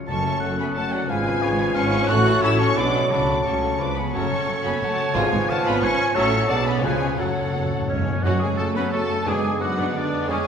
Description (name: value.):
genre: classical.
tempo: 177 BPM.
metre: 3/4.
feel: straight.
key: F# minor.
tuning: A4 = 440 Hz.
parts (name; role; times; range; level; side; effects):
warm clarinet; second line; 0.0-10.5 s; C#4 to C#5; -32 LUFS; right 2 dB; none.
concert harp; arpeggios; 0.0-10.5 s; E#2 to B5; -31 LUFS; left 7 dB; none.
dark symphonic violin section; melody; 0.1-10.5 s; C#5 to F#6; -28 LUFS; left 2 dB; none.
silver concert flute; second line; 0.1-10.5 s; C#5 to D6; -30 LUFS; equal; none.
warm oboe; second line; 0.1-10.5 s; C#4 to A5; -29 LUFS; right 1 dB; none.
warm studio violin section; second line; 0.1-10.5 s; A3 to D5; -34 LUFS; left 3 dB; none.
mellow bassoon; accompaniment; 0.1-10.5 s; E#3 to C#4; -28 LUFS; right 2 dB; none.
warm symphonic viola section; accompaniment; 0.1-10.5 s; F#3 to F#4; -30 LUFS; equal; none.
dark trombone section; sustained chords; 0.1-10.5 s; E#2 to B3; -32 LUFS; right 2 dB; none.
mellow French horn section; sustained chords; 0.1-10.5 s; G#3 to F#4; -32 LUFS; left 4 dB; none.
dark symphonic cello section; bass; 0.1-10.5 s; F#2 to B3; -29 LUFS; right 1 dB; none.
rich chamber double bass section; bass; 0.1-10.4 s; F#1 to F#2; -30 LUFS; right 3 dB; none.
timpani; percussion; 0.1-0.6, 3.1-3.6, 7.2-9.7 s; F#2 to C#3; -30 LUFS; equal; none.
room: wet concert hall reverb, RT60 2.0 s.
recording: minimal, uncompressed stereo recording.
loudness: -19 LUFS.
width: side -7 dB against mid.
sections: 0.1-8.2 A section; 8.2-10.5 B section.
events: timpani fill 7.2-8.2.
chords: 0.1 F#m; 1.1 C#7/G#; 2.1 F#m/A; 2.8 G#m7b5/B; 3.1 F#m/C#; 3.8 C#; 4.1 F#m; 5.2 C#7/G#; 6.2 F#m/A; 6.5 G#m7b5/B; 6.8 C#; 7.2 F#m; 9.3 G#m7b5/F#.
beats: | 0.09 0.43 0.76 | 1.10 1.43 1.76 | 2.09 2.43 2.77 | 3.11 3.46 3.80 | 4.14 4.49 4.82 | 5.16 5.49 5.82 | 6.16 6.49 6.83 | 7.18 7.54 7.89 | 8.24 8.59 8.93 | 9.27 9.60 9.94 | 10.29.